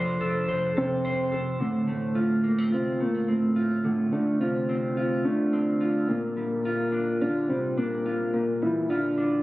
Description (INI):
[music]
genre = dream pop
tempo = 107 BPM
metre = 4/4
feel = straight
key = unclear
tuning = A4 = 440 Hz
[part]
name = mellow electric guitar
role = arpeggios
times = 0.0-9.4 s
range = Bb2 to C5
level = -28 LUFS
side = equal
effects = wide subtle chorus, digital delay
[part]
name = warm sub bass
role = bass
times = 0.0-1.6 s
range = F1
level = -39 LUFS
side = equal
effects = none
[part]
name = soft octave-layered synth lead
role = melody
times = 0.8-9.4 s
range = A3 to E4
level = -25 LUFS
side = equal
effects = chorus, digital delay
[sound]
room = moderate plate reverb, RT60 3.1 s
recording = recorded on a phone in the room, club reverb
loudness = -24 LUFS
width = side -17 dB against mid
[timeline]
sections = 0.0-1.6 A section; 1.6-9.4 B section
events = none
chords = 0.0 F6; 1.6 Dm7; 6.1 Bb6